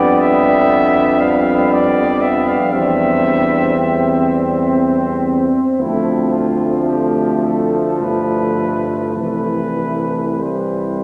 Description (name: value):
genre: classical, hymn-like piece for brass band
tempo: 48-60 BPM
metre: 3/4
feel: rubato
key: C major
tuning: A4 = 441 Hz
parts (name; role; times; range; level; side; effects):
- mellow cornet; melody; 0.0-11.0 s; E4 to F5; -24 LUFS; equal; none
- dark French horn section; second line; 0.0-11.0 s; C4 to E4; -23 LUFS; equal; none
- bright trombone; accompaniment; 0.0-11.0 s; E3 to G3; -23 LUFS; equal; none
- clear trombone section; accompaniment; 0.0-11.0 s; G3 to C4; -22 LUFS; equal; none
- warm tuba; bass; 0.0-11.0 s; G1 to F2; -22 LUFS; equal; none
room: wet cathedral reverb, RT60 5.6 s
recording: none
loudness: -16 LUFS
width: mono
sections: 0.0-11.0 A section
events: none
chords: 0.0 G7/F; 2.7 C/E; 5.8 Dm7; 8.0 G13; 9.2 C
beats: 0.70 1.71 | 2.72 3.75 4.78 | 5.79 6.88 8.01 | 9.17 10.40